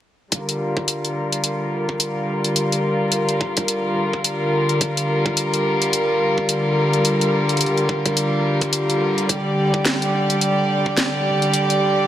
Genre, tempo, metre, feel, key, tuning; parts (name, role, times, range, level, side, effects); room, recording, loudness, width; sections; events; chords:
glitch hop; 107 BPM; 4/4; swing 59% on 16ths; G minor pentatonic; A4 = 439 Hz
rich chamber string section; sustained chords; 0.3-12.1 s; D3 to D5; -18 LUFS; equal; sidechain pumping, low-pass filter
drum and bass drum kit; drums; 0.3-11.8 s; hi-hat, snare drum; -21 LUFS; left 1 dB
electronic kick drum; drums; 0.3-11.0 s; -25 LUFS; right 1 dB; high-pass filter on kick, high-pass filter on room
moderate lush hall reverb, RT60 2.3 s; vinyl crackle; -18 LUFS; side -11 dB against mid
0.3-12.1 A section
filter sweep on string section 0.3-12.1
0.3 Gm7